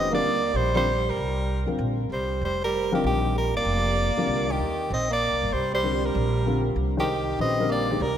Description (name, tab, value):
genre	modal jazz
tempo	193 BPM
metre	4/4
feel	swing 64% on 8ths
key	unclear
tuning	A4 = 440 Hz
part	bright soprano saxophone	melody	0.0-8.2 s	G4 to Eb5	-26 LUFS	equal	tape echo
part	breathy tenor saxophone	second line	0.0-8.2 s	Eb3 to C4	-29 LUFS	right 4 dB	none
part	dark grand piano	accompaniment	0.0-8.0 s	D3 to C5	-29 LUFS	left 3 dB	wide subtle chorus
part	upright bass	bass	0.0-8.2 s	F1 to Gb2	-28 LUFS	equal	none
room	moderate lush hall reverb, RT60 2.5 s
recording	dreamy mix soaked in reverb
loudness	-22 LUFS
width	side -9 dB against mid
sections	0.0-8.2 A section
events	none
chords	0.0 F13sus4